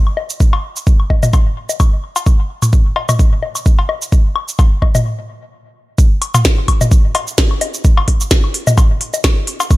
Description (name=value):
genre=techno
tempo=129 BPM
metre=4/4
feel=swing 55% on 16ths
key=none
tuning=none
part: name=electronic woodblock, cowbell and toms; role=percussion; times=0.1-9.8 s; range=none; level=-18 LUFS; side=left 2 dB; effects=studio ambience, dub echo
part: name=minimal click drum kit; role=drums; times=0.3-9.8 s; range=hi-hat, shaker, snare drum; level=-20 LUFS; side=right 1 dB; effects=studio ambience
part: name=electronic kick drum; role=drums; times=0.4-9.8 s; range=none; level=-11 LUFS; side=equal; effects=studio ambience
room=digital ambience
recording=none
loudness=-12 LUFS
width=side -18 dB against mid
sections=0.0-6.0 A section; 6.0-9.8 B section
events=stop 5.1-6.0; drop 6.0-9.8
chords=none